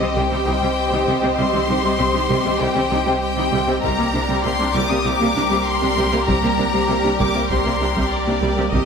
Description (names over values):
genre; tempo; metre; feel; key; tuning
cinematic, hybrid orchestral and electronic film score; 98 BPM; 4/4; straight; unclear; A4 = 440 Hz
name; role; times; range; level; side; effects
clear symphonic violin section; melody; 0.0-8.9 s; D5 to Eb6; -23 LUFS; left 4 dB; none
rich symphonic violin section; second line; 0.0-8.9 s; G4 to C5; -24 LUFS; left 3 dB; none
rich symphonic viola section; accompaniment; 0.0-8.8 s; G3 to Eb4; -26 LUFS; right 2 dB; none
phased analog pad; sustained chords; 0.0-8.9 s; G3 to Eb5; -24 LUFS; right 1 dB; phaser, chorus
soft round pluck; arpeggios; 0.0-8.8 s; C3 to G4; -28 LUFS; left 1 dB; chorus, tape echo
clear symphonic cello section; bass; 0.0-8.8 s; C3; -26 LUFS; right 3 dB; none
pure sine sub bass; bass; 0.0-8.9 s; C2; -29 LUFS; equal; none
rich symphonic double bass section; bass; 0.2-8.8 s; C2; -29 LUFS; right 4 dB; none
taiko ensemble; drums; 3.8-8.9 s; none; -28 LUFS; equal; none
room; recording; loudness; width
wet scoring stage reverb, RT60 1.8 s; none; -16 LUFS; side -6 dB against mid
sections
0.0-8.9 A section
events
none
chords
0.0 Cm; 3.8 Gm/C